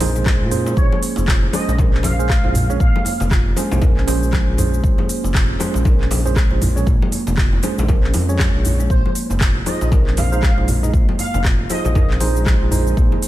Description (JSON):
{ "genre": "afro house", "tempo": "118 BPM", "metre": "4/4", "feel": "swing 59% on 16ths", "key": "Bb minor", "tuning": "A4 = 442 Hz", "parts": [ { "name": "mellow tine electric piano", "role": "stabs", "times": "0.0-13.3 s", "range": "Db4 to Eb5", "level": "-26 LUFS", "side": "right 5 dB", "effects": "medium stereo tremolo, sidechain pumping, ping-pong delay" }, { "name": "smooth synth bass", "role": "bass", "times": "0.0-13.1 s", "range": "F1 to Bb2", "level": "-20 LUFS", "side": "equal", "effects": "sidechain pumping" }, { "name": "afro-pop drum kit", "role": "drums", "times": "0.0-13.3 s", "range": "cabasa, handclaps, hi-hat, rim click, toms", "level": "-25 LUFS", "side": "equal", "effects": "studio reverb" }, { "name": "congas", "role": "percussion", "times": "0.0-13.2 s", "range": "none", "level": "-27 LUFS", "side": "left 3 dB", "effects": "none" }, { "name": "djembe", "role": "percussion", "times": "0.0-13.2 s", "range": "none", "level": "-28 LUFS", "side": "right 2 dB", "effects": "none" }, { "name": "marimba with soft mallets", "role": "arpeggios", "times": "0.2-13.3 s", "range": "Ab3 to Bb4", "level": "-27 LUFS", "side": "right 1 dB", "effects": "sidechain pumping, ping-pong delay" }, { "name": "electronic kick drum", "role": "drums", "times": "0.3-13.1 s", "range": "none", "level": "-17 LUFS", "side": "equal", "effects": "studio reverb" }, { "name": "expressive portamento lead", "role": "melody", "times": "0.8-3.2, 8.9-12.1 s", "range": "C5 to F5", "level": "-27 LUFS", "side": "equal", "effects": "ensemble chorus, vintage 12-bit sampler grit, ping-pong delay" } ], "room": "digital ambience", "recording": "none", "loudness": "-14 LUFS", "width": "side -15 dB against mid", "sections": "0.0-13.3 A section", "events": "none", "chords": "0.0 Bbm7; 8.9 Ab" }